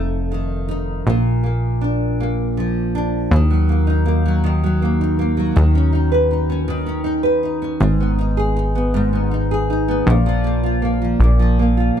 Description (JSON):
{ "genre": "six-eight pop ballad", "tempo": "53 BPM (dotted quarters)", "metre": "6/8", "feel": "straight", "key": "Eb minor", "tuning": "A4 = 441 Hz", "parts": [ { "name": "nylon-string guitar", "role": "accompaniment", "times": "0.0-12.0 s", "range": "F2 to B4", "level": "-18 LUFS", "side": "equal", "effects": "double-tracked left and right" }, { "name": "plucky analog bass", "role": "bass", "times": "0.0-11.9 s", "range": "F1 to Eb2", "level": "-18 LUFS", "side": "equal", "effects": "none" } ], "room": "studio ambience", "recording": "dark, warm production", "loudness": "-16 LUFS", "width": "side -9 dB against mid", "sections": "0.0-3.3 A section; 3.3-12.0 B section", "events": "none", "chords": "0.0 F7; 1.1 Bb; 3.3 Ebm; 5.6 Badd9/D#; 7.8 Abm; 10.1 Bb5", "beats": "| 1.07 2.19 | 3.32 4.44 | 5.57 6.69 | 7.82 8.95 | 10.07 11.20" }